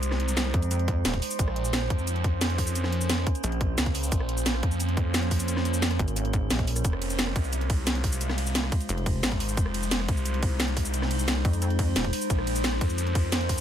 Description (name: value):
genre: dark technical drum and bass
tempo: 176 BPM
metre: 4/4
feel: straight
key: F minor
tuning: A4 = 438 Hz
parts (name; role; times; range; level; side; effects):
- metallic inharmonic drone; sustained chords; 0.0-13.6 s; Ab3 to C5; -32 LUFS; right 1 dB; chorus, built-in reverb, sidechain pumping
- phased detuned saw bass; bass; 0.0-13.6 s; F1 to F2; -28 LUFS; equal; phaser, overdrive, sidechain pumping
- drum and bass drum kit; drums; 0.0-13.6 s; hi-hat, ride cymbal, rim click, shaker, snare drum; -30 LUFS; equal; overdrive
- pulsing pluck wobble bass; bass; 0.5-1.2, 3.4-3.8, 6.0-6.8, 8.9-9.2, 11.4-12.1 s; Eb1 to F2; -27 LUFS; equal; chorus
- electronic kick drum; drums; 0.5-13.6 s; none; -27 LUFS; equal; overdrive
room: light reverb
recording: none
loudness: -24 LUFS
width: side -10 dB against mid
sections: 0.0-13.6 A section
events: none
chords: 0.0 Fm; 1.4 Bbmadd9; 6.8 Fm; 12.3 Bbmadd9